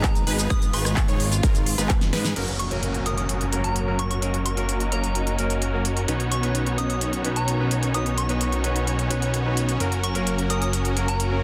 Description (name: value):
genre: EDM, festival progressive house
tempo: 129 BPM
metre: 4/4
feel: straight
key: F# major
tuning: A4 = 437 Hz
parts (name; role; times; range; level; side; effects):
- soft synth bell; melody; 0.0-11.2 s; A#5 to D#6; -35 LUFS; equal; chorus, phaser, dub echo
- warm symphonic string section; sustained chords; 0.0-11.4 s; D#3 to E#4; -35 LUFS; equal; sidechain pumping, low-pass filter
- unison pluck; arpeggios; 0.0-2.3 s; A#4 to C#5; -37 LUFS; equal; sidechain pumping, dub echo
- supersaw chords; riff; 0.0-11.4 s; B3 to C#5; -32 LUFS; equal; sidechain pumping, low-pass filter, dub echo
- fat analog bass; bass; 0.0-11.4 s; F#1 to G#2; -28 LUFS; equal; tube saturation, sidechain pumping
- electronic kick drum; drums; 0.0-2.0 s; none; -24 LUFS; equal; overdrive
- pop drum kit; drums; 0.0-11.3 s; crash cymbal, handclaps, hi-hat, rim click, shaker, snare drum; -31 LUFS; equal; soft clipping on snare
- bright grand piano; accompaniment; 2.4-11.4 s; B2 to B4; -32 LUFS; equal; sidechain pumping, dub echo
- downlifter; sound effects; 2.4-6.1 s; none; -37 LUFS; equal; none
room: light reverb, digital ambience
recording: dense, heavily limited modern master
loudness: -24 LUFS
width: mono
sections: 0.0-2.4 A section; 2.4-11.4 B section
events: drop 0.0-2.4; drum fill 2.0-2.4; filter sweep on supersaw synth 2.4-11.4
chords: 0.0 G#m; 2.4 F#; 6.1 Badd9; 9.8 F#